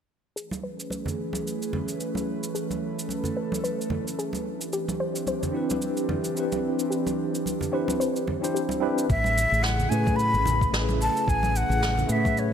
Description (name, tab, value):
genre	sunset chillout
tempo	110 BPM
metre	4/4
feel	swing 57% on 16ths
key	A major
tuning	A4 = 441 Hz
part	airy breathy pad	sustained chords	0.4-12.5 s	C#3 to B4	-31 LUFS	right 1 dB	chorus
part	soft round pluck	arpeggios	0.4-8.8 s	G4 to C5	-33 LUFS	left 2 dB	chorus, vintage 12-bit sampler grit, digital delay
part	cabasa and snare drum	drums	0.4-12.5 s	none	-34 LUFS	right 1 dB	none
part	congas	percussion	0.5-12.3 s	none	-34 LUFS	right 3 dB	none
part	tine electric piano	accompaniment	5.5-12.5 s	A3 to C5	-29 LUFS	left 1 dB	fast stereo tremolo, auto-pan, digital delay
part	breathy jazz flute	melody	9.1-12.5 s	C#5 to B5	-25 LUFS	left 1 dB	digital delay
part	woody fretless electric bass	bass	9.1-12.5 s	A1 to A2	-25 LUFS	equal	none
part	electronic kick drum	drums	9.1-12.3 s	none	-26 LUFS	equal	none
room	moderate lush hall reverb, RT60 1.9 s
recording	none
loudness	-24 LUFS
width	side -8 dB against mid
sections	0.4-9.1 A section; 9.1-12.5 B section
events	filter sweep on synth pluck 0.4-9.1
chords	0.4 Amaj9; 4.5 Cmaj9; 9.1 Amaj9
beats	| 0.37 0.91 1.46 2.00 | 2.55 3.09 3.64 4.18 | 4.73 5.28 5.82 6.37 | 6.91 7.46 8.00 8.55 | 9.09 9.64 10.19 10.73 | 11.28 11.82 12.37